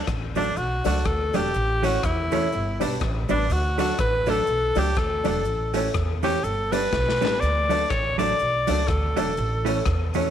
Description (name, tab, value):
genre	ska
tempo	123 BPM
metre	4/4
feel	swing 59% on 8ths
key	D major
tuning	A4 = 440 Hz
part	upright bass	bass	0.1-10.3 s	E1 to E2	-27 LUFS	equal	none
part	raw garage drum kit	drums	0.1-10.2 s	hi-hat, kick drum, rim click, snare drum	-30 LUFS	left 3 dB	none
part	cabasa	percussion	0.1-10.2 s	none	-48 LUFS	left 12 dB	none
part	edgy alto saxophone	melody	0.4-10.1 s	D4 to D5	-25 LUFS	left 1 dB	tape echo
part	hollow-body jazz guitar	accompaniment	0.4-10.3 s	E3 to D4	-29 LUFS	right 10 dB	none
part	dark upright piano	stabs	0.4-10.3 s	C#4 to D5	-31 LUFS	left 10 dB	none
room	moderate plate reverb, RT60 1.4 s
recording	1960s-style stereo with parts hard left and right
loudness	-21 LUFS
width	side -10 dB against mid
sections	0.0-10.3 A section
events	alto saxophone solo 0.0-10.3; drum fill 6.9-7.4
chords	0.0 D; 1.5 A; 2.5 G; 3.5 D; 5.5 A; 6.4 G; 7.4 D; 9.4 A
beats	0.07 0.56 1.05 | 1.54 2.03 2.52 3.01 | 3.50 3.99 4.48 4.97 | 5.46 5.95 6.44 6.93 | 7.42 7.90 8.39 8.88 | 9.37 9.86